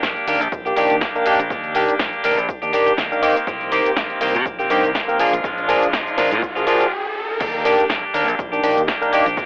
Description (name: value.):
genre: filtered disco house.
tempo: 122 BPM.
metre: 4/4.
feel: swing 55% on 16ths.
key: Eb major.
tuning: A4 = 439 Hz.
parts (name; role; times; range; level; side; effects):
clean electric guitar; riff; 0.0-9.5 s; Eb3 to G4; -24 LUFS; equal; sidechain pumping, low-pass filter, cassette tape.
modern bright fingered electric bass; bass; 0.0-9.5 s; Ab1 to C3; -30 LUFS; equal; sidechain pumping, low-pass filter.
electronic kick drum; drums; 0.0-9.5 s; none; -31 LUFS; equal; cassette tape.
punchy analog drum machine; drums; 0.0-9.5 s; cabasa, crash cymbal, hi-hat, snare drum; -28 LUFS; equal; sidechain pumping on hats, cassette tape, sidechain pumping on perc, sidechain pumping on cymbals.
barky tine electric piano; accompaniment; 0.3-9.3 s; Eb3 to Bb4; -20 LUFS; equal; phaser, sidechain pumping, low-pass filter, cassette tape.
riser; sound effects; 5.1-7.4 s; none; -30 LUFS; equal; none.
room: light reverb.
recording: home recording on cassette, telephone sound.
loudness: -19 LUFS.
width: mono.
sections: 0.0-7.4 A section; 7.4-9.5 B section.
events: riser 5.1-7.4; stop 6.9-7.4; drop 7.4-9.5.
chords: 0.0 Ebmaj7; 3.2 Cm7; 5.2 Bb7; 7.4 Ebmaj7.